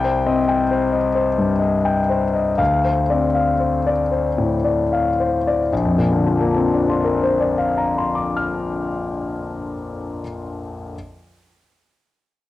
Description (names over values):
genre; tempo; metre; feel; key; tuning
neoclassical minimalist piano; 37-46 BPM (dotted quarters); 6/8; rubato; Bb major; A4 = 440 Hz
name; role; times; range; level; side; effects
clear concert grand piano; solo; 0.0-11.0 s; Bb1 to F6; -17 LUFS; left 2 dB; none
room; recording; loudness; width
light reverb, studio ambience; home recording on cassette; -17 LUFS; side -14 dB against mid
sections
0.0-5.7 A section; 5.7-8.8 B section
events
slowing down 0.0-5.7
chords
0.0 Cm; 2.6 Dm7; 5.7 Bbadd9